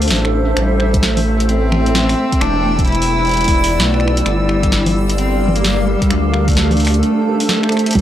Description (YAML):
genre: IDM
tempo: 130 BPM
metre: 4/4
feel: swing 62% on 16ths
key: unclear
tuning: A4 = 440 Hz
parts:
  - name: warm cello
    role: melody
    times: 0.0-8.0 s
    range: G3 to E4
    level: -18 LUFS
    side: right 1 dB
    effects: analog delay
  - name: granular cloud pad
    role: sustained chords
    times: 0.0-8.0 s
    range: G3 to G5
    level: -19 LUFS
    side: left 1 dB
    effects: built-in reverb
  - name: dark detuned saw bass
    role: bass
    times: 0.0-8.0 s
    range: E1 to D2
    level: -17 LUFS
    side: equal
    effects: none
  - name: booming analog drum machine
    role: drums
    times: 0.0-8.0 s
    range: congas, finger snaps, hi-hat, snare drum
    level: -20 LUFS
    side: equal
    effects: none
  - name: bubbling stepped-filter texture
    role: texture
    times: 0.8-8.0 s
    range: E6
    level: -30 LUFS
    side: equal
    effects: chorus, built-in reverb
  - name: electronic kick drum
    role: drums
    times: 0.9-8.0 s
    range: none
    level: -17 LUFS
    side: equal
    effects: none
  - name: soft round pluck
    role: arpeggios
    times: 8.0 s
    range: G3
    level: -14 LUFS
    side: right 3 dB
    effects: chorus
room: little or no reverb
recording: dry, gritty hardware recording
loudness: -12 LUFS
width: side -11 dB against mid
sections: 0.0-8.0 A section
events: drum fill 7.7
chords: 0.0 Dm7; 0.6 Am7; 2.2 Em7; 4.3 Gm7; 6.1 Dm7